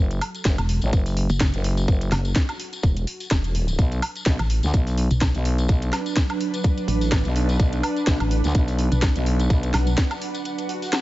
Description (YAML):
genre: bass house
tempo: 126 BPM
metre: 4/4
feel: swing 55% on 16ths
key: unclear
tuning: A4 = 440 Hz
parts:
  - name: sweeping resonant pad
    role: sustained chords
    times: 0.0-11.0 s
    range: F#3 to B4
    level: -34 LUFS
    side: right 3 dB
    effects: none
  - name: growling FM bass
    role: bass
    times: 0.0-9.7 s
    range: F#1 to D2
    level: -22 LUFS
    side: equal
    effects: tube saturation, sidechain pumping
  - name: garage drum kit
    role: drums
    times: 0.1-11.0 s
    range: hi-hat, snare drum, woodblock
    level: -28 LUFS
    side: equal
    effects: overdrive, studio reverb
  - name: tambourine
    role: percussion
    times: 0.1-11.0 s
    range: none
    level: -38 LUFS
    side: left 4 dB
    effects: none
  - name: electronic kick drum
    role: drums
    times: 0.5-10.1 s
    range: none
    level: -20 LUFS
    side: equal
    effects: studio reverb
  - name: pulsing pluck wobble bass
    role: bass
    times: 0.6-10.0 s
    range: E1 to B1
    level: -22 LUFS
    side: equal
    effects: chorus, tube saturation, sidechain pumping
  - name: granular cloud pad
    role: texture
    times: 6.0-11.0 s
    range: D4 to F#5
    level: -30 LUFS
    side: right 2 dB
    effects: built-in reverb, sidechain pumping
  - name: swell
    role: sound effects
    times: 10.6-11.0 s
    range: none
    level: -31 LUFS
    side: right 2 dB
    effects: none
room: digital ambience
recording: nothing above 7.8 kHz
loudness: -20 LUFS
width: side -17 dB against mid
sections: 0.0-11.0 A section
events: break 10.5-11.0; swell 10.6-11.0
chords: 0.0 F#m7; 3.8 Bm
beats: 0.45 0.93 1.41 | 1.88 2.36 2.83 3.31 | 3.79 4.26 4.74 5.21 | 5.69 6.17 6.64 7.12 | 7.60 8.07 8.55 9.02 | 9.50 9.98 10.45 10.93